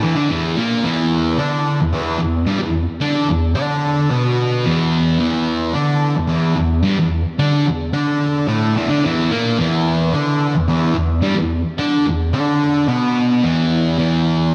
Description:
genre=rock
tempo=110 BPM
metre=4/4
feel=straight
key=unclear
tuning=A4 = 436 Hz
part: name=thick fuzz guitar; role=solo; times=0.0-14.5 s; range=E2 to D4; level=-17 LUFS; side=equal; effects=distortion, phaser, analog delay
room=wet plate reverb, RT60 2.7 s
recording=dreamy mix soaked in reverb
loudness=-18 LUFS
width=mono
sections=0.0-14.5 A section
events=none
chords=0.0 E5

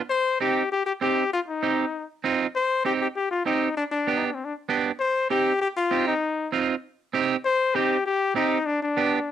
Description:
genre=latin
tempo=196 BPM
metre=4/4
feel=straight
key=C harmonic minor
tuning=A4 = 440 Hz
part: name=warm trumpet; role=melody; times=0.1-9.3 s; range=C4 to C5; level=-23 LUFS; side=left 4 dB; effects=cassette tape
part: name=clean electric guitar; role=accompaniment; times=0.4-9.2 s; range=B3 to G4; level=-24 LUFS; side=right 7 dB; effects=cassette tape
room=moderate studio reverb, RT60 0.6 s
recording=home recording on cassette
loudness=-22 LUFS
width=side -10 dB against mid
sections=0.0-7.4 A section; 7.4-9.3 B section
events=none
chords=0.1 Cm; 3.8 G; 5.0 Cm; 8.7 G

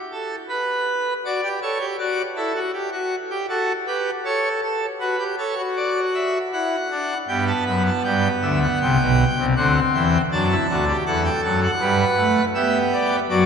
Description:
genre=classical, baroque-style 3-part fugue for pipe organ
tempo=80 BPM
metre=4/4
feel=straight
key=G major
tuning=A4 = 440 Hz
part: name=pipe organ, full organ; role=solo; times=0.1-13.5 s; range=B1 to B5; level=-19 LUFS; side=equal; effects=none
room=wet cathedral reverb, RT60 5.3 s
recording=nothing above 10.4 kHz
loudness=-19 LUFS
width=side -6 dB against mid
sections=0.0-7.3 A section; 7.3-13.5 B section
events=none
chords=0.0 N.C.; 1.2 D/F#; 2.7 G; 4.2 A; 5.8 D/F#; 7.3 G; 8.8 C; 10.3 D; 11.8 G

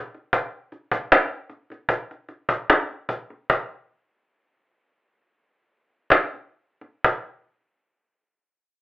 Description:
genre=blues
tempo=62-78 BPM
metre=4/4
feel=straight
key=none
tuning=none
part: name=cajon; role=drums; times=0.1-7.3 s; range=none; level=-18 LUFS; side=equal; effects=none
room=wet studio reverb, RT60 0.5 s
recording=telephone sound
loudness=-21 LUFS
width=side -18 dB against mid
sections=0.0-7.0 A section; 7.0-8.8 B section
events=slowing down 0.3-7.0; stop 3.5-6.1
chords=none

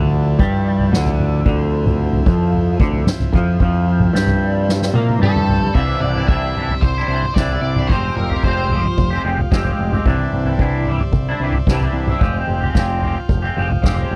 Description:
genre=psychedelic rock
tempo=112 BPM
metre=4/4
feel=straight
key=C major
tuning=A4 = 440 Hz
part: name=combo organ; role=sustained chords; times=0.0-14.2 s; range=F3 to G5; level=-32 LUFS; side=equal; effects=none
part: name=twangy electric guitar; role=riff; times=0.0-14.2 s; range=C3 to G4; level=-24 LUFS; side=equal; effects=phaser, double-tracked
part: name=growling picked electric bass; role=bass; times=0.0-14.2 s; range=F1 to Bb2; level=-21 LUFS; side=equal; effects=overdrive
part: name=soft-mallet drum kit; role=drums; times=0.4-14.1 s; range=crash cymbal, kick drum, snare drum, toms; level=-21 LUFS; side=equal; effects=none
part: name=octave-fuzz lead guitar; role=melody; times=5.2-9.2 s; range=A4 to E5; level=-26 LUFS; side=equal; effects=distortion, slapback echo
room=little or no reverb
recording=dry, close 1970s-style studio recording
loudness=-17 LUFS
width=mono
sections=0.0-5.7 A section; 5.7-14.2 B section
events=drum fill 4.7-5.7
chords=0.0 Dmadd9; 5.7 Cadd9; 7.9 Fmadd9; 10.1 Cadd9; 12.2 Fmadd9

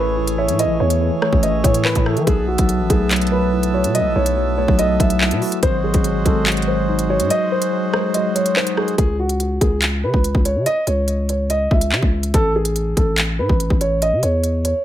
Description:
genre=hip hop, drill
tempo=143 BPM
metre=4/4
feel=half-time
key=unclear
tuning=A4 = 441 Hz
part: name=dark concert grand piano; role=melody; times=0.0-14.8 s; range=F#4 to E5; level=-21 LUFS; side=right 1 dB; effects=none
part: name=mellow tine electric piano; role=accompaniment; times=0.0-9.0 s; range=E3 to E5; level=-22 LUFS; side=equal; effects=fast stereo tremolo
part: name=hand-pumped harmonium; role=sustained chords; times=0.0-9.0 s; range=G#3 to E5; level=-27 LUFS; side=right 2 dB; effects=none
part: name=growling 808-style bass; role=bass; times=0.0-14.7 s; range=G#1 to E3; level=-21 LUFS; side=equal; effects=none
part: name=drill drum kit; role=drums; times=0.3-14.7 s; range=handclaps, hi-hat, kick drum, rim click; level=-19 LUFS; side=equal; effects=none
room=little or no reverb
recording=none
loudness=-15 LUFS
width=side -12 dB against mid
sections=0.0-9.0 A section; 9.0-14.8 B section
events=kick muted 7.3-9.0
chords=0.0 A; 2.3 B7sus4; 5.6 G#7; 9.0 N.C.; 12.3 A

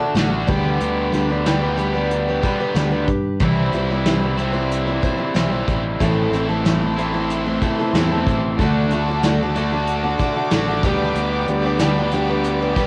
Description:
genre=folk rock and heartland rock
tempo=93 BPM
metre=4/4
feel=straight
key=unclear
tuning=A4 = 440 Hz
part: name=picked steel-string acoustic guitar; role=accompaniment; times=0.0-12.9 s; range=A2 to C5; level=-24 LUFS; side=equal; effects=none
part: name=raw garage guitar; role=riff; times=0.0-12.9 s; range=A2 to G4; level=-26 LUFS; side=equal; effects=overdrive
part: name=fingered electric bass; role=bass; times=0.1-12.7 s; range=A1 to G2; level=-26 LUFS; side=equal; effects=none
part: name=soft brush drum kit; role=drums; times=0.2-12.9 s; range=hi-hat, kick drum, snare drum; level=-26 LUFS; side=equal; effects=cassette tape
part: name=dark studio string section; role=sustained chords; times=6.0-12.9 s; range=A4 to D6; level=-30 LUFS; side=equal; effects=none
room=light reverb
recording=home recording on cassette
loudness=-19 LUFS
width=mono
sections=0.0-12.9 A section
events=none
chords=0.5 G/D; 3.4 C; 6.0 Am; 8.6 D; 10.8 G/D

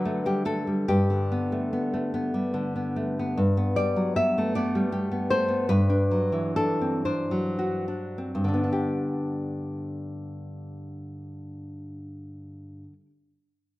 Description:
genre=romantic piece for solo classical guitar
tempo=33-52 BPM (dotted quarters)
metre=6/8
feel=rubato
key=G major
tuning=A4 = 441 Hz
part: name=nylon-string guitar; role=solo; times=0.0-13.1 s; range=G2 to E5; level=-25 LUFS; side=equal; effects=none
room=moderate recital hall reverb, RT60 1.6 s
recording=none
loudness=-24 LUFS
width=side -17 dB against mid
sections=0.0-3.4 A section; 3.4-8.7 B section; 8.7-11.6 C section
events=slowing down 2.1-8.7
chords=0.0 D; 0.9 G

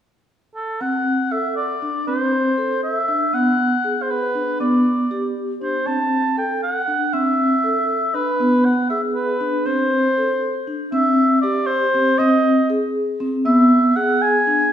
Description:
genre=contemporary instrumental, contemporary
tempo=237 BPM (eighths)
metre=5/8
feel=straight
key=unclear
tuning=A4 = 443 Hz
part: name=warm oboe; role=melody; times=0.6-14.7 s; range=A4 to A5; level=-20 LUFS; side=right 1 dB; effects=none
part: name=vibraphone with soft mallets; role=arpeggios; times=0.8-14.7 s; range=B3 to A4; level=-19 LUFS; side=equal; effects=none
room=wet recital hall reverb, RT60 1.6 s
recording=heard from further back in the room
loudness=-16 LUFS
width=side -9 dB against mid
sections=0.8-10.9 A section; 10.9-14.7 B section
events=none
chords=0.0 N.C.; 0.8 C6; 3.3 Bm6; 4.6 G; 5.9 C6; 8.4 Bm6; 9.7 Am; 10.9 C; 12.2 G#; 13.5 E

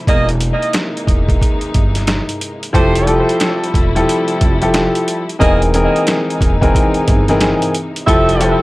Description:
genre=hip hop, boom-bap hip-hop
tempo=90 BPM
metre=4/4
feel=swing 62% on 16ths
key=unclear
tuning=A4 = 438 Hz
part: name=muted studio string section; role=sustained chords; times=0.0-8.6 s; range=C3 to E4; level=-24 LUFS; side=left 1 dB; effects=high-pass filter, low-pass filter
part: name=warm saxophone section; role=stabs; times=0.1-8.5 s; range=A3 to E5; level=-18 LUFS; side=right 1 dB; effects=high-pass filter, low-pass filter, analog delay
part: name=upright bass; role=bass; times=0.1-8.5 s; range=E1 to G1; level=-18 LUFS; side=equal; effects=none
part: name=boom bap sampler-style drum kit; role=drums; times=0.1-8.6 s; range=hi-hat, kick drum, snare drum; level=-16 LUFS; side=equal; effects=none
part: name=dark grand piano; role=accompaniment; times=2.7-8.6 s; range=E3 to Bb4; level=-15 LUFS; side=left 1 dB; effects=cassette tape, high-pass filter, low-pass filter
room=little or no reverb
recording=dry, gritty hardware recording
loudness=-12 LUFS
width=side -20 dB against mid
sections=0.0-8.6 A section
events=break 0.1-2.7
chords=0.1 C7alt/E; 2.7 Fmaj9; 5.4 C7alt/E; 8.1 Fmaj9

